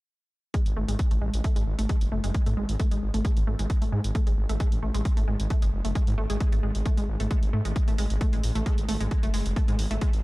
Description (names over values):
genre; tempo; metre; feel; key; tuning
driving peak-time techno; 133 BPM; 4/4; straight; unclear; A4 = 439 Hz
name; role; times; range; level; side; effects
wide unison pluck; riff; 0.5-10.1 s; G#3 to A3; -32 LUFS; equal; tube saturation, sidechain pumping, digital delay
electronic hi-hat; drums; 0.5-10.2 s; none; -40 LUFS; right 2 dB; none
electronic kick drum; drums; 0.5-10.1 s; none; -24 LUFS; equal; overdrive
detuned saw bass; bass; 0.7-10.2 s; F#1 to G#2; -27 LUFS; equal; sidechain pumping
room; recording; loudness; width
little or no reverb; dark, warm production; -23 LUFS; side -20 dB against mid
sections
0.5-10.2 A section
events
none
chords
0.5 F#madd9 (rootless)